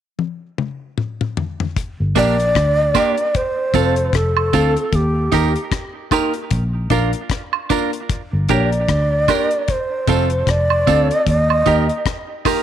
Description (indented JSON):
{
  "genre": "roots reggae",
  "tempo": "76 BPM",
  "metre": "4/4",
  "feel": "swing 58% on 16ths",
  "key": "G minor",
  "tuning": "A4 = 440 Hz",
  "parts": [
    { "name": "deep reggae drum kit", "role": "drums", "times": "0.2-12.6 s", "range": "hi-hat, kick drum, rim click, toms", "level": "-22 LUFS", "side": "left 4 dB", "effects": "none" },
    { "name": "vintage muted fingered electric bass", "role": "bass", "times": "2.0-11.9 s", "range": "F1 to Eb2", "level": "-18 LUFS", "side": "equal", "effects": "none" },
    { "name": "breathy bright long shakuhachi", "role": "melody", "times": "2.2-12.0 s", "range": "G4 to Eb5", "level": "-18 LUFS", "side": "right 1 dB", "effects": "dub echo" },
    { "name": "clean electric guitar", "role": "accompaniment", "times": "2.2-12.6 s", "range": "Bb3 to Bb4", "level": "-22 LUFS", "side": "right 10 dB", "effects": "dub echo" },
    { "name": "warm baby grand piano", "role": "stabs", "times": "2.2-12.6 s", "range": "A3 to Bb4", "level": "-25 LUFS", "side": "left 11 dB", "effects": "none" },
    { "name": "tambourine and woodblock", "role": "percussion", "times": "2.2-12.6 s", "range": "none", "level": "-25 LUFS", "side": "right 11 dB", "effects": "none" }
  ],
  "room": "light reverb, small room ambience",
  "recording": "1960s-style stereo with parts hard left and right",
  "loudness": "-16 LUFS",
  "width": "side -10 dB against mid",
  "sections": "0.0-1.8 A section; 1.8-12.6 B section",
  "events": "drum fill 0.2-1.8",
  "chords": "0.0 N.C.; 1.8 Gm; 3.3 F; 4.9 Eb; 6.5 Bb; 8.1 Gm; 9.7 F; 11.3 Eb"
}